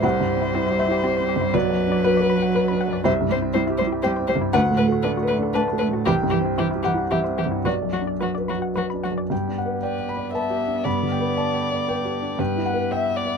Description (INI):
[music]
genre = neoclassical piano and strings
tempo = 118 BPM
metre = 3/4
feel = rubato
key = G major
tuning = A4 = 436 Hz
[part]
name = muted violin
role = melody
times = 0.0-13.4 s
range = F#4 to E5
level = -26 LUFS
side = left 4 dB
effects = none
[part]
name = muted cello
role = second line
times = 0.0-13.4 s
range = E3 to B3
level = -28 LUFS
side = right 5 dB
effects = none
[part]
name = felt-muted upright piano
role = accompaniment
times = 0.0-13.4 s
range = B1 to B5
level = -22 LUFS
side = right 1 dB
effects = none
[part]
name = hollow square pluck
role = arpeggios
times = 0.0-9.3 s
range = C4 to B5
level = -31 LUFS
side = left 5 dB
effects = chorus
[sound]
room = moderate booth ambience, RT60 0.2 s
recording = minimal, uncompressed stereo recording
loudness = -20 LUFS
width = side -6 dB against mid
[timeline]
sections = 0.0-9.3 A section; 9.3-13.4 B section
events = none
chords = 0.0 C; 1.5 Bm; 3.0 C; 4.5 D6; 6.1 C; 7.7 Bm; 9.3 G; 12.4 Em/G